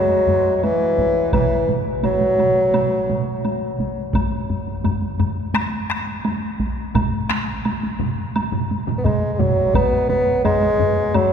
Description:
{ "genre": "japanese traditional, taiko drum ensemble", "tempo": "86 BPM", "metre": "4/4", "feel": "straight", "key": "unclear", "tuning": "A4 = 443 Hz", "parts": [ { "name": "mellow bassoon", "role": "melody", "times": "0.0-3.4, 9.0-11.3 s", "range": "E3 to B3", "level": "-18 LUFS", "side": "equal", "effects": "none" }, { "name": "solo taiko drums", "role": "percussion", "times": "0.1-11.3 s", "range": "none", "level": "-25 LUFS", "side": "right 1 dB", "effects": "none" }, { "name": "taiko ensemble", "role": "percussion", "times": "0.3-11.3 s", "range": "none", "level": "-25 LUFS", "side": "left 4 dB", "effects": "none" }, { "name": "woodblock", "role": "percussion", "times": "0.6-11.3 s", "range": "none", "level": "-32 LUFS", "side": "right 2 dB", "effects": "none" }, { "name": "taiko ensemble", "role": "percussion", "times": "1.0-9.9 s", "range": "none", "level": "-28 LUFS", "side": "equal", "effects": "none" }, { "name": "taiko ensemble", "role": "percussion", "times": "1.3-9.6 s", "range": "none", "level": "-27 LUFS", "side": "right 5 dB", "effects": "none" } ], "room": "wet cathedral reverb, RT60 5.1 s", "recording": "recorded in a church or concert hall", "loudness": "-17 LUFS", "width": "side -7 dB against mid", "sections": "0.0-11.3 A section", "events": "none", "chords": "none" }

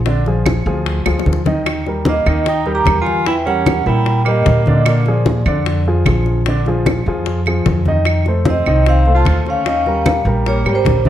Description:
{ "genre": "Afro-Cuban jazz", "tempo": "150 BPM", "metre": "4/4", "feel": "straight", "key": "Bb mixolydian", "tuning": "A4 = 441 Hz", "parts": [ { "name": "upright bass", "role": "bass", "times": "0.0-11.1 s", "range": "Ab1 to Bb2", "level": "-17 LUFS", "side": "equal", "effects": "none" }, { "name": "warm upright piano", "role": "accompaniment", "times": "0.1-11.1 s", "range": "D3 to E5", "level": "-20 LUFS", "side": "equal", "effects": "none" }, { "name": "bongos", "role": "percussion", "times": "0.1-11.1 s", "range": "none", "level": "-24 LUFS", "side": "left 7 dB", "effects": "none" }, { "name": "congas", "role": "percussion", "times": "0.1-11.1 s", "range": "none", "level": "-20 LUFS", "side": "left 1 dB", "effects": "none" }, { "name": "claves", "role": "percussion", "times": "0.5-10.9 s", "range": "none", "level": "-26 LUFS", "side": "right 6 dB", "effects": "none" }, { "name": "vibraphone with soft mallets", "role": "melody", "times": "2.1-5.4, 8.5-11.1 s", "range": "C5 to Bb5", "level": "-19 LUFS", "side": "equal", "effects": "none" }, { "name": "breathy tenor saxophone", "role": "second line", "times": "2.1-5.4, 8.5-11.1 s", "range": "G3 to G4", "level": "-22 LUFS", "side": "right 4 dB", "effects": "none" } ], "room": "moderate large studio reverb, RT60 1.2 s", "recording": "none", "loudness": "-13 LUFS", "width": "side -11 dB against mid", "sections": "0.0-11.1 A section", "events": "drum fill 1.1-1.7, 7.9", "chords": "0.0 Bb7; 1.7 Eb; 3.3 Edim7; 4.9 Bb7; 8.1 F7; 9.7 Eb9" }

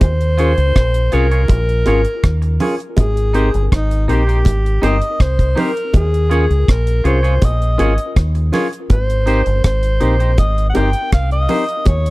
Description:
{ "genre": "lovers rock reggae", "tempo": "81 BPM", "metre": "4/4", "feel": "straight", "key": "Ab major", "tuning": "A4 = 440 Hz", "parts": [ { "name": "breathy alto saxophone", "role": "melody", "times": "0.0-12.1 s", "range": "Eb4 to G5", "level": "-20 LUFS", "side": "equal", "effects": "tape echo" }, { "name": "deep dub fingered electric bass", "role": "bass", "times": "0.0-12.1 s", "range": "G1 to Eb2", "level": "-15 LUFS", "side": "equal", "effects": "none" }, { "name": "deep reggae drum kit", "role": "drums", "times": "0.0-12.1 s", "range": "hi-hat, kick drum, rim click", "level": "-14 LUFS", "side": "equal", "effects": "none" }, { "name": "bongos", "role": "percussion", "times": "0.0-12.0 s", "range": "none", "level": "-24 LUFS", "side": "right 3 dB", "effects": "none" }, { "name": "mellow tine electric piano", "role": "accompaniment", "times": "0.4-11.6 s", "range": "C4 to Bb4", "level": "-23 LUFS", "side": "left 2 dB", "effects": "slow stereo tremolo, tape echo" }, { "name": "twangy electric guitar", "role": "stabs", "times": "0.4-11.6 s", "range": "Eb4 to Db5", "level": "-23 LUFS", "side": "right 2 dB", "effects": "none" } ], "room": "little or no reverb", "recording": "dry, close 1970s-style studio recording", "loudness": "-13 LUFS", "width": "side -20 dB against mid", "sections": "0.0-12.1 A section", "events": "none", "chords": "0.0 Eb9sus4; 3.0 Abmaj7; 5.9 Eb9sus4; 8.9 Abmaj7" }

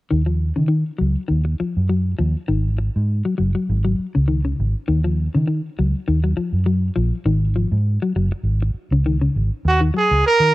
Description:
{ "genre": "afrobeat", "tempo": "101 BPM", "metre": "4/4", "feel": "swing 55% on 16ths", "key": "Eb minor", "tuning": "A4 = 440 Hz", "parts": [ { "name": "clean electric guitar", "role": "arpeggios", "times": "0.1-10.1 s", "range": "Db3 to Gb3", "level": "-22 LUFS", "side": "left 3 dB", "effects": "none" }, { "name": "vintage muted fingered electric bass", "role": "bass", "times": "0.1-10.5 s", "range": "Gb1 to Eb3", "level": "-19 LUFS", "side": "equal", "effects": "none" }, { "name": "bright trumpet", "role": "melody", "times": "9.7-10.5 s", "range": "Gb4 to Bb4", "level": "-15 LUFS", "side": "right 2 dB", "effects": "none" } ], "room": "little or no reverb", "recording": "dry, close 1970s-style studio recording", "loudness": "-17 LUFS", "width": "side -18 dB against mid", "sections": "0.1-9.6 A section", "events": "none", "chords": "0.1 Ebmadd9; 2.5 Ab7sus4; 4.9 Ebmadd9; 7.3 Ab7sus4; 9.6 Ebm7" }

